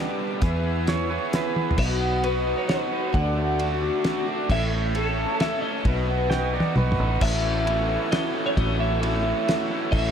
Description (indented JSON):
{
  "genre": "folk rock and heartland rock",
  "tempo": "132 BPM",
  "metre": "3/4",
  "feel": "straight",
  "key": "unclear",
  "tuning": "A4 = 444 Hz",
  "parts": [
    { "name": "picked twelve-string acoustic guitar", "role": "accompaniment", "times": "0.0-10.1 s", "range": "A2 to B4", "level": "-31 LUFS", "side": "left 6 dB", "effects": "slapback echo" },
    { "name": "accordion", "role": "sustained chords", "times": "0.0-10.1 s", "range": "E4 to E6", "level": "-35 LUFS", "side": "right 3 dB", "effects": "light tremolo tuning" },
    { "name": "raw garage guitar", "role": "riff", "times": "0.0-10.1 s", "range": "A2 to B4", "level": "-28 LUFS", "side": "right 2 dB", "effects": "overdrive, slapback echo" },
    { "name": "fingered electric bass", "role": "bass", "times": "0.4-10.1 s", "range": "A1 to E2", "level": "-26 LUFS", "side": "equal", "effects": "none" },
    { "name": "cloth-damped thuddy drum kit", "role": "drums", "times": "0.4-10.0 s", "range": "crash cymbal, hi-hat, kick drum, ride cymbal, snare drum, toms", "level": "-28 LUFS", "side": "equal", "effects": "none" },
    { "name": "pedal steel guitar", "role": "second line", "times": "0.9-1.8, 6.3-7.1 s", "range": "B4 to G5", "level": "-31 LUFS", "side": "right 7 dB", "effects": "slapback echo" },
    { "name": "twelve-string electric guitar", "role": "melody", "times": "1.8-10.1 s", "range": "A4 to F#5", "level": "-28 LUFS", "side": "right 1 dB", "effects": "tremolo, analog delay" }
  ],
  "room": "light reverb, small room ambience",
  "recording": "none",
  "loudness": "-21 LUFS",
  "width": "side -8 dB against mid",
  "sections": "0.0-1.8 A section; 1.8-7.2 B section; 7.2-10.1 C section",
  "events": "pedal steel guitar solo 0.0-1.8; drum fill 1.6, 6.3-7.2",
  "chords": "0.4 E; 1.8 B; 3.1 D; 4.5 A; 5.9 B; 7.2 A6",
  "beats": "| 0.43 0.88 1.33 | 1.78 2.24 2.69 | 3.14 3.60 4.05 | 4.50 4.96 5.41 | 5.86 6.31 6.77 | 7.22 7.67 8.12 | 8.57 9.03 9.48 | 9.93"
}